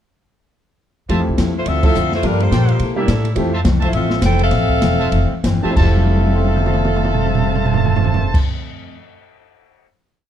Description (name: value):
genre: jazz, big band swing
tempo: 181-213 BPM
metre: 4/4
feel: swing 60% on 8ths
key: F major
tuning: A4 = 440 Hz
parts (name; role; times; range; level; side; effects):
- clear grand piano; accompaniment; 1.1-3.5, 5.6-8.6 s; F2 to C7; -24 LUFS; right 2 dB; none
- picked steel-string acoustic guitar; accompaniment; 1.1-9.0 s; F2 to A4; -24 LUFS; left 4 dB; none
- clear trumpet section; stabs; 1.1-8.4 s; E4 to A5; -26 LUFS; right 1 dB; none
- upright bass; bass; 1.1-8.4 s; E1 to C3; -18 LUFS; equal; none
- open jazz drum kit; drums; 1.1-9.9 s; crash cymbal, hi-hat, kick drum, ride cymbal, snare drum, toms; -19 LUFS; right 1 dB; none
- mellow saxophone section; melody; 1.6-8.4 s; G3 to G5; -20 LUFS; left 1 dB; none
room: light reverb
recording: dark, warm production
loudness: -14 LUFS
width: side -10 dB against mid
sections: 1.1-5.8 A section; 5.8-8.4 final chord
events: band accent 1.8; slowing down 3.4-5.8; drum fill 5.9-8.3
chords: 1.1 Fmaj7; 1.7 Dm11; 2.2 Gm7; 2.8 C13; 3.4 Fmaj7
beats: | 1.10 1.38 1.66 1.95 | 2.23 2.51 2.79 3.08 | 3.36 3.64 3.93 4.22 | 4.51 4.81 5.12 5.43 | 5.76 6.09 6.42 6.75 | 7.08 7.41 7.74 8.07